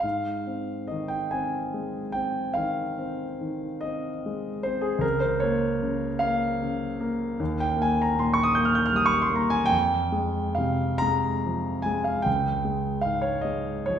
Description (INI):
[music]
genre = classical, romantic nocturne for solo piano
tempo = 43-53 BPM (dotted quarters)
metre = 12/8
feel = rubato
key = Ab major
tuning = A4 = 440 Hz
[part]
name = warm concert grand piano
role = solo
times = 0.0-14.0 s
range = Db2 to G6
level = -24 LUFS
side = equal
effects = none
[sound]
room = wet recital hall reverb, RT60 1.5 s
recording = recorded in a church or concert hall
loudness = -24 LUFS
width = side -8 dB against mid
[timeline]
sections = 0.0-14.0 A section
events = none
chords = 0.0 Ab; 5.0 Bbm/Db; 7.4 Eb; 9.7 Fm; 12.3 Dbadd9